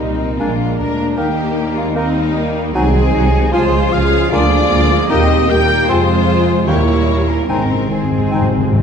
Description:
classical, dramatic, fast romantic movement for symphony orchestra; 152 BPM; 4/4; straight; Ab major; A4 = 440 Hz
warm symphonic violin section; melody; 0.0-8.8 s; G3 to Bb4; -25 LUFS; left 6 dB
concert flute; second line; 0.0-8.8 s; Eb5 to G6; -23 LUFS; left 2 dB
rich studio violin section; second line; 0.0-8.8 s; Eb4 to G5; -22 LUFS; left 4 dB
rich symphonic viola section; accompaniment; 0.0-8.8 s; F3 to Bb4; -23 LUFS; right 1 dB
dark trombone section; sustained chords; 0.0-8.8 s; Ab2 to Bb3; -23 LUFS; right 3 dB
mellow French horn section; sustained chords; 0.0-8.8 s; G3 to F4; -23 LUFS; left 5 dB
dark trumpet section; stabs; 0.0-8.8 s; G4 to C5; -24 LUFS; right 1 dB
clear symphonic double bass section; bass; 0.0-8.8 s; Ab1 to F2; -18 LUFS; right 2 dB
rich symphonic cello section; bass; 0.0-8.8 s; Ab3 to F4; -23 LUFS; right 3 dB
mellow clarinet; second line; 0.4-8.5 s; D4 to F4; -27 LUFS; left 3 dB
warm cor anglais; second line; 0.4-8.5 s; Bb4 to Ab5; -30 LUFS; right 2 dB
clear bassoon; accompaniment; 0.4-8.5 s; F3 to C4; -27 LUFS; right 1 dB
timpani; percussion; 6.7-8.8 s; Ab2 to Eb3; -19 LUFS; left 2 dB
moderate scoring stage reverb, RT60 1.7 s; dark, warm production; -12 LUFS; side -7 dB against mid
0.0-8.8 A section
timpani fill 7.5-8.8
0.4 Bb7; 1.2 Eb; 2.7 Ab7/C; 3.5 Dbmaj7; 4.3 Bb7/D; 5.1 Eb; 5.9 Fm; 6.7 Eb7b9; 7.5 Ab
0.00 0.40 0.79 | 1.18 1.57 1.95 2.34 | 2.74 3.14 3.53 3.92 | 4.32 4.71 5.10 5.49 | 5.89 6.28 6.68 7.08 | 7.49 7.91 8.32 8.74

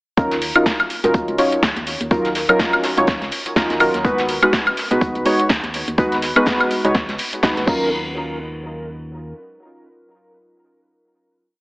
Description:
deep house; 124 BPM; 4/4; swing 57% on 16ths; Eb minor; A4 = 441 Hz
deep mellow chord stab; stabs; 0.2-11.6 s; Gb3 to Db5; -19 LUFS; equal; chorus, sidechain pumping, digital delay
organ-like FM bass; bass; 0.2-9.3 s; Db2 to Eb2; -30 LUFS; equal; tube saturation
deep house drum kit; drums; 0.2-7.8 s; cabasa, crash cymbal, hi-hat, snare drum, woodblock; -20 LUFS; equal; overdrive, studio reverb
electronic kick drum; drums; 0.2-7.8 s; -21 LUFS; equal; overdrive, studio reverb
modern studio drum kit; drums; 0.2-7.7 s; hi-hat, snare drum; -30 LUFS; equal
moderate digital room reverb, RT60 0.9 s, digital ambience; heavily compressed radio sound, multiband compression, AM radio sound; -16 LUFS; side -24 dB against mid
0.2-7.9 drop; 7.9-11.6 final hit
drop 0.2-7.9
0.2 Ebm9; 4.0 B6; 7.7 Ebm9
| 0.17 0.66 1.14 1.63 | 2.11 2.59 3.08 3.56 | 4.05 4.53 5.01 5.50 | 5.98 6.46 6.95 7.43 | 7.92 8.40 8.88 9.37 | 9.85 10.34 10.82 11.30

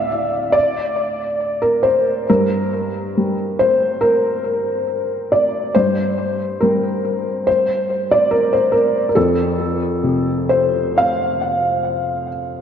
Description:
neoclassical minimalist piano; 70 BPM; 4/4; rubato; A4 = 440 Hz
felt-muted upright piano; solo; 0.0-12.6 s; D2 to F5; -16 LUFS; equal; ping-pong delay
wet lush hall reverb, RT60 3.0 s; dreamy mix soaked in reverb, cassette tape; -15 LUFS; side -8 dB against mid
0.0-12.6 A section
0.0 D5; 2.3 N.C.; 9.2 F
0.54 1.41 | 2.28 3.15 4.02 4.87 | 5.73 6.59 7.46 8.31 | 9.16 10.02 10.97 11.84

